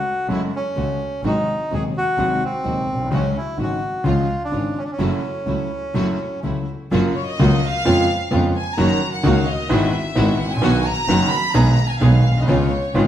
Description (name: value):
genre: tango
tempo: 128 BPM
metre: 4/4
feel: rubato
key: F# minor, F# major from 6.9 s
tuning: A4 = 441 Hz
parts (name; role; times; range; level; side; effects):
- bandoneon; melody; 0.0-6.4 s; B#3 to G#4; -24 LUFS; equal; none
- warm concert grand piano; accompaniment; 0.3-13.1 s; D#1 to G#4; -20 LUFS; equal; none
- warm studio string section; stabs; 0.3-13.1 s; G#3 to G#4; -28 LUFS; equal; none
- rich double bass; bass; 0.3-13.1 s; F#1 to E#2; -23 LUFS; right 2 dB; none
- warm chamber violin section; second line; 7.2-13.1 s; C#5 to B5; -23 LUFS; equal; none
room: wet stone room reverb, RT60 1.2 s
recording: band playing live in one room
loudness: -17 LUFS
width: side -11 dB against mid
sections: 0.0-6.9 A section; 6.9-13.1 B section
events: violin section solo 6.9-13.1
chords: 0.0 F#madd9; 1.2 G#7; 3.1 C#sus4; 4.1 C#; 5.0 F#m7; 6.9 F#maj7; 7.9 C#7/E#; 8.8 F#6; 9.7 Eadd9/G#; 10.6 B; 11.6 G#m/B; 12.5 C#7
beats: 0.29 0.77 | 1.24 1.71 2.18 2.65 | 3.12 3.58 4.05 4.53 | 5.00 5.47 5.95 6.43 | 6.92 7.39 7.86 8.32 | 8.79 9.25 9.71 10.17 | 10.63 11.09 11.55 12.02 | 12.48 12.95